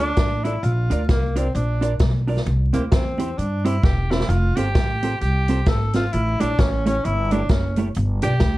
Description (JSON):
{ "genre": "ska", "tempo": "131 BPM", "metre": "4/4", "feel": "swing 60% on 8ths", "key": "F major", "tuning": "A4 = 440 Hz", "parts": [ { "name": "warm tenor saxophone", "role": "melody", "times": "0.0-8.6 s", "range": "Bb3 to A4", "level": "-25 LUFS", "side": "equal", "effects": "slapback echo, plate reverb" }, { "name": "semi-hollow electric guitar", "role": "accompaniment", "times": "0.0-8.3 s", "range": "A3 to D5", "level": "-25 LUFS", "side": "right 2 dB", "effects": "tube saturation, harmonic tremolo, plate reverb" }, { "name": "upright bass", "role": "bass", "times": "0.0-8.6 s", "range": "E1 to G2", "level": "-22 LUFS", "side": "equal", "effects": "none" }, { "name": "swinging big-band drum kit", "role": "drums", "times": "0.2-8.5 s", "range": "hi-hat, kick drum, snare drum", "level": "-21 LUFS", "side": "equal", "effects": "none" } ], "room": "light reverb", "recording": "dark, warm production, vinyl crackle", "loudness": "-18 LUFS", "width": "side -17 dB against mid", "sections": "0.0-8.6 A section", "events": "tenor saxophone solo 0.0-8.6; drum fill 3.8-4.3", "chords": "0.0 Dm; 0.6 Bb; 2.5 C; 4.3 F; 6.1 A7; 8.0 G7" }